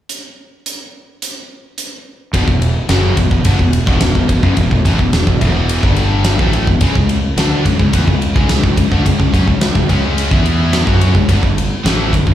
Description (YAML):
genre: hard rock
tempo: 107 BPM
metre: 4/4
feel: straight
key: unclear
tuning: A4 = 440 Hz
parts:
  - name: big rock drum kit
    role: drums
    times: 0.1-12.3 s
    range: hi-hat, kick drum, ride cymbal, snare drum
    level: -16 LUFS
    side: equal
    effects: none
  - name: distorted electric guitar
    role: riff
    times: 2.3-12.3 s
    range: E2 to F#4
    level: -19 LUFS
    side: left 7 dB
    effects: overdrive, slapback echo
  - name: scooped high-gain guitar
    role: riff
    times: 2.3-12.3 s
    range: E2 to F#4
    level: -21 LUFS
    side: right 7 dB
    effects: distortion, slapback echo
  - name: fuzz fingered electric bass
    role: bass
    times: 2.3-12.3 s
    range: E1 to F#2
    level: -16 LUFS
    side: equal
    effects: overdrive
room: small room reverb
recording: live gig heard through the venue's PA, club reverb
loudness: -11 LUFS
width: side -12 dB against mid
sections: 0.1-2.3 A section; 2.3-12.3 B section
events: none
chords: 0.1 N.C.; 2.3 E5; 5.8 G5; 6.4 E5; 6.8 C#5; 10.3 E5; 10.9 C#5; 11.3 G5